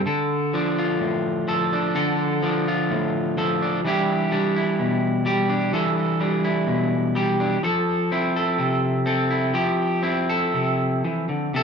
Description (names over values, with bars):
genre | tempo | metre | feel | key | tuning
folk, solo fingerstyle acoustic guitar | 63 BPM | 4/4 | rubato | unclear | A4 = 440 Hz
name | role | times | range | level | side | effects
electric guitar at the edge of break-up | solo | 0.0-11.6 s | A2 to A4 | -20 LUFS | equal | none
room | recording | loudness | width
moderate studio reverb, RT60 0.8 s | minimal, uncompressed stereo recording | -20 LUFS | side -6 dB against mid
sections
0.0-11.6 A section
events
none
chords
0.1 Dm; 3.9 Em7; 7.6 Fmaj7